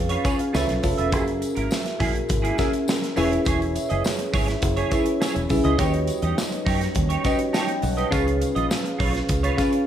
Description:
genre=polished 1980s jazz-funk pop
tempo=103 BPM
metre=4/4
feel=straight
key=unclear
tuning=A4 = 440 Hz
part: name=bell-like FM electric piano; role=accompaniment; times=0.0-9.9 s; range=C#4 to A5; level=-25 LUFS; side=left 1 dB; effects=wide subtle chorus
part: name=glass harmonica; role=sustained chords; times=0.0-9.8 s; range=G3 to E#5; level=-30 LUFS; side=equal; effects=none
part: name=fingered electric bass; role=bass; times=0.0-9.5 s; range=E1 to F#2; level=-25 LUFS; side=equal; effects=none
part: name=clean electric guitar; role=riff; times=0.1-9.8 s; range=A#3 to E5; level=-28 LUFS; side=right 4 dB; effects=ensemble chorus
part: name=modern studio drum kit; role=drums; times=0.1-9.9 s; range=hi-hat, kick drum, snare drum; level=-26 LUFS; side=equal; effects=gated reverb
part: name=tambourine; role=percussion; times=0.2-9.7 s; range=none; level=-41 LUFS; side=left 6 dB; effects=none
room=light reverb, studio reverb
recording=none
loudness=-20 LUFS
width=side -10 dB against mid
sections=0.0-9.9 A section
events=FM electric piano fill 9.6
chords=0.0 C#7; 0.5 C#7alt; 1.1 F#9; 3.2 E6; 5.8 D#7alt; 8.1 C#7

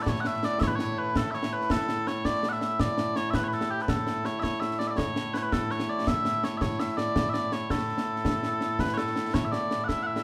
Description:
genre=scottish traditional, Scottish pipe music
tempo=110 BPM (dotted quarters)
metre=6/8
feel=straight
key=A major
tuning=A4 = 441 Hz
part: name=mellow small bagpipes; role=melody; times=0.0-10.2 s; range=A2 to F#5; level=-30 LUFS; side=equal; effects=none
part: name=concert snare drum and concert bass drum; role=drums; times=0.1-10.2 s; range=none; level=-33 LUFS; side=equal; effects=none
room=moderate large studio reverb, RT60 1.2 s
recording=band playing live in one room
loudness=-28 LUFS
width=mono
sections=0.1-8.8 A section; 8.8-10.2 B section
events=none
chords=none

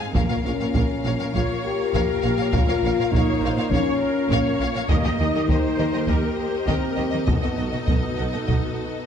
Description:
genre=cinematic, epic orchestral film score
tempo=101 BPM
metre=4/4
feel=straight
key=unclear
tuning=A4 = 442 Hz
part: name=warm symphonic violin section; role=melody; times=0.0-8.5 s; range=Eb5 to F5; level=-33 LUFS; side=left 3 dB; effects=none
part: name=clear studio violin section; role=second line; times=0.0-8.5 s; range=F#4 to F5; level=-34 LUFS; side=left 2 dB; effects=none
part: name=rich symphonic string section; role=sustained chords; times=0.0-9.1 s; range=Bb3 to Ab5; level=-30 LUFS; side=equal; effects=none
part: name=warm French horn section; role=sustained chords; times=0.0-9.1 s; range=Ab3 to G4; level=-25 LUFS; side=left 4 dB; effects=none
part: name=rich symphonic cello section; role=bass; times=0.0-8.5 s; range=Ab2 to Eb3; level=-30 LUFS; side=right 2 dB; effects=none
part: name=dark tuba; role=bass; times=0.1-8.5 s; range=Bb1 to Eb2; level=-31 LUFS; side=right 3 dB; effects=none
part: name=rich symphonic double bass section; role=bass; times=0.1-8.5 s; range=Bb1 to Eb2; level=-29 LUFS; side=right 3 dB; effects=none
part: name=taiko ensemble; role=drums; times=0.1-9.0 s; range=none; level=-25 LUFS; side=equal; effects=none
part: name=rich symphonic viola section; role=accompaniment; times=1.3-9.1 s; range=D#4 to Eb5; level=-31 LUFS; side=right 1 dB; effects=none
room=wet scoring stage reverb, RT60 1.6 s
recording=dark, warm production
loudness=-20 LUFS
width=side -8 dB against mid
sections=0.0-9.1 A section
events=none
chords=0.1 Bbm; 4.9 Eb; 7.3 B7

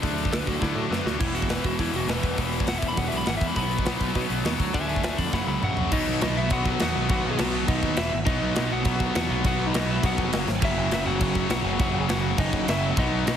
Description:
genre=punk rock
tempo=204 BPM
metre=4/4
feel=straight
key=B major from 5.9 s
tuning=A4 = 442 Hz
part: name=heavy high-gain guitar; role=riff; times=0.0-13.4 s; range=E2 to D4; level=-34 LUFS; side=equal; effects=distortion
part: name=sludgy distorted guitar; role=riff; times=0.0-13.4 s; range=F#2 to C#5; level=-31 LUFS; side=right 14 dB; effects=overdrive
part: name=tight distorted guitar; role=riff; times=0.0-13.4 s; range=E2 to D4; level=-30 LUFS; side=left 10 dB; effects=distortion
part: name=growling picked electric bass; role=bass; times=0.0-13.4 s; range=E1 to B2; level=-30 LUFS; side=equal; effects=overdrive
part: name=big rock drum kit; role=drums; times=0.0-13.3 s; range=crash cymbal, hi-hat, kick drum, snare drum, splash cymbal, toms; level=-27 LUFS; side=equal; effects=none
part: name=lightly driven lead guitar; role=melody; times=0.3-13.4 s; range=D#4 to B5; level=-30 LUFS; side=left 1 dB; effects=ping-pong delay
room=little or no reverb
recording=heavily compressed radio sound, multiband compression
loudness=-22 LUFS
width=side -9 dB against mid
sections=0.0-5.9 A section; 5.9-13.4 B section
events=lead electric guitar solo 0.0-5.9; drum fill 0.6-1.2, 5.3-5.9, 10.5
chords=0.0 D; 1.2 E; 3.6 B; 4.6 D; 5.3 F#; 5.9 B; 8.0 E5; 8.1 N.C.; 8.3 B; 10.3 F#5; 10.5 N.C.; 10.6 F#

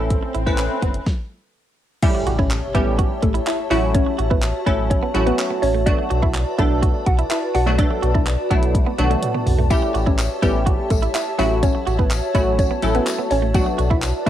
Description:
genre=dance-pop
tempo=125 BPM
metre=4/4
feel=straight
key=B minor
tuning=A4 = 440 Hz
part: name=mallet-like synth pluck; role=melody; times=0.0-0.5 s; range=A4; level=-32 LUFS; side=right 5 dB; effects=chorus, cassette tape, tape echo
part: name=wavetable chord stab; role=accompaniment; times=0.0-14.3 s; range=F#3 to B4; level=-24 LUFS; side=equal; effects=cassette tape
part: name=sub bass with octave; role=bass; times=0.0-14.3 s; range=F#1 to B1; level=-22 LUFS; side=equal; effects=sidechain pumping
part: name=swell and impact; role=sound effects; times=0.0-3.9 s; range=none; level=-29 LUFS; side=equal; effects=none
part: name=pop drum kit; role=drums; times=0.1-14.3 s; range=crash cymbal, handclaps, hi-hat, kick drum, snare drum, toms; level=-21 LUFS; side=equal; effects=cassette tape
part: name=direct-recorded clean electric guitar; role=riff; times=0.2-14.3 s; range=A3 to F#4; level=-28 LUFS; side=right 10 dB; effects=wide subtle chorus, cassette tape
part: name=mallet-like synth pluck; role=melody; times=2.0-14.3 s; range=A3 to F#5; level=-24 LUFS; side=equal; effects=chorus, phaser, cassette tape
part: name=glassy FM pad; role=sustained chords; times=2.0-14.3 s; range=F#4 to A5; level=-27 LUFS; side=equal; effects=ensemble chorus, built-in reverb, sidechain pumping, cassette tape
part: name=tambourine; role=percussion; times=9.7-14.3 s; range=none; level=-37 LUFS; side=left 13 dB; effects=none
room=light reverb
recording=home recording on cassette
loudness=-17 LUFS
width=side -11 dB against mid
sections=0.0-2.0 A section; 2.0-14.3 B section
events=swell 0.0-2.0; stop 1.1-2.0; drop 2.0-14.3; impact 2.0-3.9; drum fill 8.7-9.7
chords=0.0 A; 2.0 A7; 3.7 F#m7/A; 5.9 Bm7; 9.7 A7; 11.4 F#m7/A; 13.5 Bm7

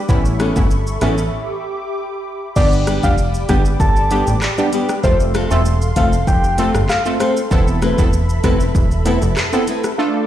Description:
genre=dancehall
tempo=97 BPM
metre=4/4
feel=straight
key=unclear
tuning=A4 = 440 Hz
part: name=warm analog pad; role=sustained chords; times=0.0-10.3 s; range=G4 to D6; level=-26 LUFS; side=equal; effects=chorus, sidechain pumping
part: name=synth brass stab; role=accompaniment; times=0.1-10.3 s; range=G3 to A4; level=-22 LUFS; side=right 3 dB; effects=chorus, sidechain pumping
part: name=plucky analog bass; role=bass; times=0.1-9.4 s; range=E1 to A1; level=-17 LUFS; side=equal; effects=none
part: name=afro-pop drum kit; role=drums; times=0.1-10.0 s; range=crash cymbal, handclaps, hi-hat, kick drum, rim click, shaker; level=-19 LUFS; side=equal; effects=none
part: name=nylon-string guitar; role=arpeggios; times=0.4-9.9 s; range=E3 to B4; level=-23 LUFS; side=left 4 dB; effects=tape echo
part: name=soft octave-layered synth lead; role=melody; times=2.6-7.3 s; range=C5 to A5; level=-20 LUFS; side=left 1 dB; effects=chorus, tape echo
room=light reverb, digital ambience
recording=played on a big sound system in a bare room, stone room reverb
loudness=-14 LUFS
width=side -12 dB against mid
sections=0.0-2.6 A section; 2.6-10.3 B section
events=break 1.3-2.6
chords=0.1 Aadd9; 1.3 Em7; 2.6 G; 5.0 F; 7.5 Amadd9/E

